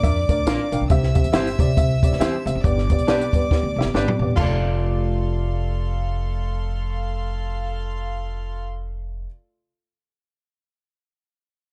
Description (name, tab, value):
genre	uptempo 1960s-style soul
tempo	138 BPM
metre	4/4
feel	swing 59% on 8ths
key	F major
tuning	A4 = 440 Hz
part	warm studio violin section	second line	0.0-8.6 s	A4 to E6	-32 LUFS	equal	none
part	dark upright piano	accompaniment	0.0-9.3 s	A3 to G5	-29 LUFS	equal	none
part	upright bass	bass	0.0-9.2 s	E1 to C3	-26 LUFS	equal	tube saturation
part	compact cocktail drum kit	drums	0.0-4.5 s	crash cymbal, hi-hat, kick drum, snare drum, toms	-24 LUFS	equal	none
part	electric guitar through a small old amp	stabs	0.5-9.3 s	D4 to D5	-31 LUFS	equal	none
room	light reverb, small room ambience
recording	dark, warm production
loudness	-22 LUFS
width	mono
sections	0.0-4.4 A section; 4.4-7.8 B section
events	upright piano fill 0.2-0.9; drum fill 3.5-4.4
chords	0.0 Bb; 0.9 C; 2.6 G; 4.4 F6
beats	0.03 0.46 | 0.90 1.33 1.76 2.20 | 2.63 3.07 3.50 3.94 | 4.37 4.80 5.24 5.67 | 6.11 6.54 6.98 7.41